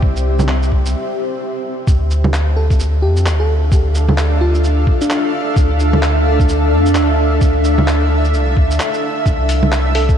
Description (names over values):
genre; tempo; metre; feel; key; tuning
future garage; 130 BPM; 4/4; swing 60% on 16ths; D minor; A4 = 440 Hz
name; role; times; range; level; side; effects
granular cloud pad; sustained chords; 0.0-10.2 s; C4 to F5; -18 LUFS; equal; built-in reverb, wide subtle chorus, sidechain pumping
warm sub bass; bass; 0.0-10.2 s; C2 to F2; -15 LUFS; equal; sidechain pumping
electronic kick drum; drums; 0.0-10.2 s; none; -14 LUFS; equal; vintage 12-bit sampler grit
lo-fi sampler-style drum kit; drums; 0.2-10.2 s; bongos, handclaps, hi-hat, shaker; -22 LUFS; right 1 dB; vintage 12-bit sampler grit
bell-like FM electric piano; melody; 2.6-5.5, 10.0-10.2 s; D4 to A4; -23 LUFS; left 1 dB; chorus, cassette tape, ping-pong delay
room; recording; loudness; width
moderate huge ambient reverb, RT60 8.1 s; dreamy mix soaked in reverb; -12 LUFS; side -8 dB against mid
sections
0.0-1.9 A section; 1.9-10.2 B section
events
break 1.0-1.9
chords
0.0 C; 1.9 Dm; 9.3 Cadd9